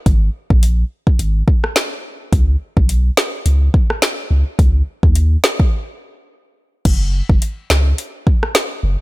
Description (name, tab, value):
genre	dancehall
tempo	106 BPM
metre	4/4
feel	swing 56% on 16ths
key	F# major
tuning	A4 = 440 Hz
part	punchy sub bass	bass	0.1-9.0 s	F#1 to D#2	-14 LUFS	equal	none
part	afro-pop drum kit	drums	0.1-8.7 s	crash cymbal, hi-hat, kick drum, rim click, snare drum	-14 LUFS	equal	none
room	digital ambience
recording	none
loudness	-13 LUFS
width	side -20 dB against mid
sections	0.0-6.9 A section; 6.9-9.0 B section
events	break 5.7-6.9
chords	none